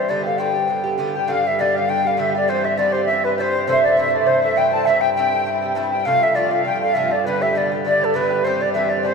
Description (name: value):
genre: celtic folk, Celtic reel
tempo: 201 BPM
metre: 4/4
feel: swing 55% on 8ths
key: G mixolydian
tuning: A4 = 441 Hz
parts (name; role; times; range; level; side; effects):
- bright wooden flute; melody; 0.0-9.1 s; A4 to A5; -19 LUFS; left 1 dB; none
- Irish bouzouki; accompaniment; 0.0-9.1 s; G2 to G4; -22 LUFS; right 2 dB; none
- hand-pumped harmonium; drone; 0.0-9.1 s; G2 to G3; -30 LUFS; right 2 dB; none
- accordion; second line; 1.1-9.1 s; B4 to A5; -25 LUFS; left 3 dB; light tremolo tuning
room: wet cathedral reverb, RT60 5.2 s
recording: recorded in a church or concert hall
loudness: -16 LUFS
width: side -5 dB against mid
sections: 0.0-1.3 A section; 1.3-9.1 A section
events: none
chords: 0.1 G; 2.5 C; 3.7 Am; 4.9 C; 6.1 F; 7.3 G; 8.5 C